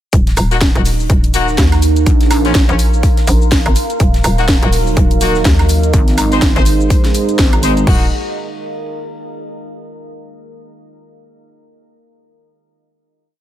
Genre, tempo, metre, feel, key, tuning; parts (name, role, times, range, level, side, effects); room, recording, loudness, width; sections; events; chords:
bass house; 124 BPM; 4/4; swing 59% on 16ths; Eb dorian; A4 = 435 Hz
hollow knocking FM bass; bass; 0.1-8.1 s; Eb1 to Eb2; -14 LUFS; equal; overdrive, sidechain pumping
electronic kick drum; drums; 0.1-8.0 s; -13 LUFS; equal
garage drum kit; drums; 0.1-8.0 s; crash cymbal, hi-hat, shaker, snare drum, woodblock; -19 LUFS; equal; overdrive
tight funk drum kit; drums; 0.1-7.8 s; hi-hat, snare drum; -31 LUFS; left 3 dB
deep dark ambient pad; texture; 0.8-9.8 s; Eb4 to C6; -22 LUFS; right 3 dB; chorus, built-in reverb, sidechain pumping
clear horn section; stabs; 0.5-8.1 s; F3 to C5; -21 LUFS; left 5 dB; sidechain pumping, tape echo
pulsing pluck wobble bass; bass; 2.1-2.7, 5.9-7.9 s; Ab1 to Bb1; -16 LUFS; equal; chorus, sidechain pumping
dark analog pad; sustained chords; 4.4-8.1 s; Gb3 to C5; -20 LUFS; right 3 dB; chorus, sidechain pumping
light reverb, small room ambience; -10 LUFS; side -12 dB against mid
0.1-7.9 drop; 7.9-9.8 final chord
drop 0.1-7.9
0.1 Ebm; 2.1 Bb5; 4.0 Ebm; 5.9 Ab; 7.9 Ebm